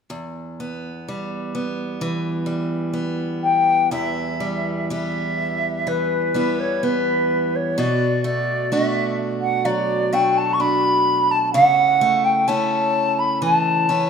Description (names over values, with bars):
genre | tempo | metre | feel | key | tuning
celtic folk, Celtic slow air | 64 BPM | 4/4 | rubato | E dorian | A4 = 440 Hz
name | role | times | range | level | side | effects
picked acoustic archtop guitar | accompaniment | 0.1-14.1 s | E2 to F#4 | -23 LUFS | right 1 dB | none
wooden flute | melody | 3.4-14.1 s | B4 to C#6 | -18 LUFS | left 1 dB | none
room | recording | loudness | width
moderate recital hall reverb, RT60 1.7 s | minimal, uncompressed stereo recording | -18 LUFS | side -6 dB against mid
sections
0.1-3.9 A section; 3.9-14.1 B section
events
none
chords
0.1 Em; 7.8 Bm7; 11.5 A/C#